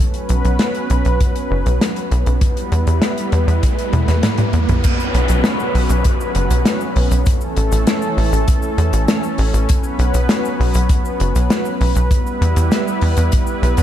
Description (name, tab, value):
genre	synthwave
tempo	99 BPM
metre	4/4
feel	straight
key	unclear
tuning	A4 = 437 Hz
part	lush unison pad	sustained chords	0.0-13.8 s	E3 to B4	-21 LUFS	equal	chorus, sidechain pumping
part	riser and downlifter	sound effects	2.4-9.7 s	none	-27 LUFS	right 1 dB	none
part	natural country drum kit	drums	0.1-13.8 s	cabasa, crash cymbal, hi-hat, snare drum, toms	-21 LUFS	left 1 dB	none
part	tight sequencer bass	bass	0.3-13.8 s	F#1 to E2	-15 LUFS	equal	none
part	kick drum	drums	1.2-13.4 s	none	-16 LUFS	equal	none
room	light reverb, studio reverb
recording	dark, warm production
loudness	-14 LUFS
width	side -11 dB against mid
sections	0.0-4.8 A section; 4.8-13.8 B section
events	riser 2.4-4.8; drum fill 3.9-4.8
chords	0.0 Bsus2; 2.4 Em; 4.8 Bsus2; 7.3 A; 9.7 Bsus2; 12.1 Em